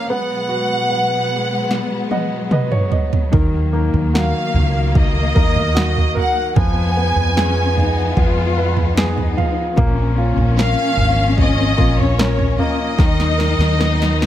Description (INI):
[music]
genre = pop ballad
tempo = 74 BPM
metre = 4/4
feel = straight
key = Eb minor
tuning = A4 = 439 Hz
[part]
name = warm studio violin section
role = melody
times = 0.0-14.3 s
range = Db5 to Ab5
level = -21 LUFS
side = equal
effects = none
[part]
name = warm baby grand piano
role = accompaniment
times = 0.0-14.3 s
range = Eb3 to Gb5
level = -24 LUFS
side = right 2 dB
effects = none
[part]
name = warm studio string section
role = sustained chords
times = 0.0-14.3 s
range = Cb3 to Bb4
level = -26 LUFS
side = left 2 dB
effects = none
[part]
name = deep house drum kit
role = drums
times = 1.7-14.3 s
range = kick drum, snare drum, toms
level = -18 LUFS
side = right 1 dB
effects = overdrive
[part]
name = warm studio cello section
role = second line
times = 3.3-14.3 s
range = Bb3 to F4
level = -26 LUFS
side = left 4 dB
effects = none
[part]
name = flamenco guitar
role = arpeggios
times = 3.3-14.3 s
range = Bb2 to Cb5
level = -27 LUFS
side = left 6 dB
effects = digital delay
[part]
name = woody fretless electric bass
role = bass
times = 3.3-14.3 s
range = Ab1 to F2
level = -18 LUFS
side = equal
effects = ensemble chorus
[sound]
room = small room reverb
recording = none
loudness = -14 LUFS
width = side -12 dB against mid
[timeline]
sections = 0.0-14.3 A section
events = drum fill 1.7-3.3, 13.0-14.3; grand piano fill 1.7-3.3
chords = 0.1 Abm7/Cb; 3.3 Ebm; 6.6 Fdim; 9.8 Bbm; 13.0 Ebm